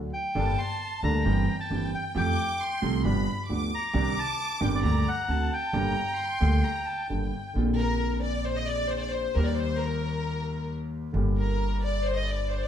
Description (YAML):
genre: tango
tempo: 134 BPM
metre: 4/4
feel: rubato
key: G minor, Bb major from 7.6 s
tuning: A4 = 442 Hz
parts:
  - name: warm concert grand piano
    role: accompaniment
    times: 0.0-12.7 s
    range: G1 to A4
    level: -30 LUFS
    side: right 1 dB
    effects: none
  - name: upright bass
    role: bass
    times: 0.0-12.7 s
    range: G1 to F2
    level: -29 LUFS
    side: equal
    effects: none
  - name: bandoneon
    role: melody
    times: 0.1-7.1 s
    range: D5 to C6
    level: -30 LUFS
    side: left 1 dB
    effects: none
  - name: warm studio violin section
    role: second line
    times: 0.4-12.7 s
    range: Bb4 to D6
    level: -32 LUFS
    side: left 1 dB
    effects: none
room: wet club reverb, RT60 0.8 s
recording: heard from further back in the room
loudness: -25 LUFS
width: side -9 dB against mid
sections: 0.0-7.6 A section; 7.6-12.7 B section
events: violin section solo 7.6-12.7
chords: 0.4 Gmadd9; 1.3 C7/G; 2.2 Fadd9; 3.1 G7; 3.9 Cmadd9; 4.8 Gm/D; 5.3 D7; 5.7 Gm; 7.6 Bbadd9; 9.4 Eb; 11.1 Gm